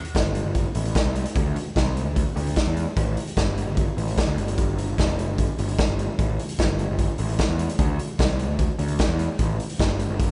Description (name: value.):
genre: indie rock.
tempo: 149 BPM.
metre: 4/4.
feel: straight.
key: unclear.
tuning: A4 = 435 Hz.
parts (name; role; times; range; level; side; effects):
raw garage drum kit; drums; 0.0-10.3 s; hi-hat, kick drum, snare drum; -26 LUFS; equal; none.
fuzz picked electric bass; bass; 0.2-10.3 s; F1 to E2; -28 LUFS; equal; overdrive.
room: little or no reverb.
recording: rough home demo mix, nothing above 10.3 kHz.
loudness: -24 LUFS.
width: mono.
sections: 0.0-10.3 A section.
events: none.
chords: none.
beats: 0.15 0.55 0.96 | 1.36 1.76 2.16 2.56 | 2.97 3.37 3.77 4.17 | 4.58 4.98 5.38 5.78 | 6.18 6.58 6.99 7.39 | 7.79 8.19 8.59 8.99 | 9.40 9.80 10.20.